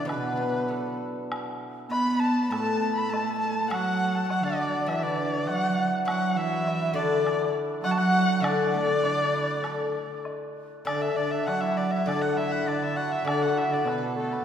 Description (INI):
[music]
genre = chinese traditional, Chinese chamber ensemble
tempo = 100 BPM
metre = 4/4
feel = rubato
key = D gong mode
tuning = A4 = 439 Hz
[part]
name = dark erhu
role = melody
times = 0.0-14.4 s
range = A4 to B5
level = -30 LUFS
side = equal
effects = none
[part]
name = bright reedy large dizi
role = second line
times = 0.0-14.4 s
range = A4 to B5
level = -32 LUFS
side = left 4 dB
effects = none
[part]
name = dark cello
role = second line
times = 0.0-14.4 s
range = B2 to B3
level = -29 LUFS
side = right 3 dB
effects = none
[part]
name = hammered dulcimer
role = second line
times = 0.0-14.4 s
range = A3 to B4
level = -32 LUFS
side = right 2 dB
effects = none
[part]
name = guzheng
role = accompaniment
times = 0.0-14.4 s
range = A2 to A4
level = -31 LUFS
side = left 5 dB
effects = none
[part]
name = woodblock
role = percussion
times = 0.1-14.0 s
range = none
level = -40 LUFS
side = left 1 dB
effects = none
[sound]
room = wet concert hall reverb, RT60 2.5 s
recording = recorded in a church or concert hall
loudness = -24 LUFS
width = side -8 dB against mid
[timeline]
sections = 0.0-10.9 A section; 10.9-14.4 B section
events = none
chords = none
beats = 0.07 0.68 | 1.29 1.90 2.51 3.11 | 3.71 4.30 4.89 5.48 | 6.07 6.66 7.24 7.83 | 8.42 9.02 9.63 10.24 | 10.86 11.47 12.07 12.67 | 13.26 13.85 14.44